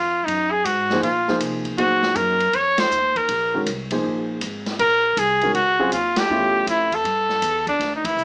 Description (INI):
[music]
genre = modal jazz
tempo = 160 BPM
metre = 4/4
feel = swing 65% on 8ths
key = Eb dorian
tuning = A4 = 438 Hz
[part]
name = clear trumpet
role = melody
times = 0.0-8.2 s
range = D4 to Db5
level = -18 LUFS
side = equal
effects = none
[part]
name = upright bass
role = bass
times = 0.0-8.2 s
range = Ab1 to C3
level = -32 LUFS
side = equal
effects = none
[part]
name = open jazz drum kit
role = drums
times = 0.3-8.2 s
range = hi-hat, kick drum, ride cymbal, snare drum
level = -29 LUFS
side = equal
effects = none
[part]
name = warm grand piano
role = accompaniment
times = 0.9-6.9 s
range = Db3 to C5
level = -23 LUFS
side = equal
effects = none
[sound]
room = moderate studio reverb, RT60 0.6 s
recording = small speaker sound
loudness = -18 LUFS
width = side -31 dB against mid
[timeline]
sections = 0.0-7.8 A section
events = band accent 2.7, 6.1, 8.0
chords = 0.0 Ebmadd9; 6.3 A7b13